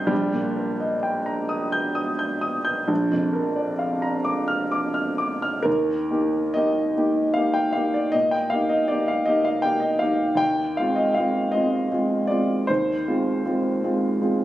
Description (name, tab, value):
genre	classical, romantic nocturne for solo piano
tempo	41-55 BPM (dotted quarters)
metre	12/8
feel	rubato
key	Eb major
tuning	A4 = 440 Hz
part	clear concert grand piano	solo	0.0-14.4 s	Bb1 to G6	-20 LUFS	equal	none
room	wet recital hall reverb, RT60 1.4 s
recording	recorded on a phone in the room, studio ambience, compression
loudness	-20 LUFS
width	side -14 dB against mid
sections	0.0-5.7 A section; 5.7-14.4 B section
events	none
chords	0.1 Eb/Bb; 2.9 Bb; 5.7 Eb; 10.4 Fm7/Eb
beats	| 0.10 1.50 2.89 4.26 | 5.66 6.97 8.14 9.27 | 10.41 11.55 12.69 13.84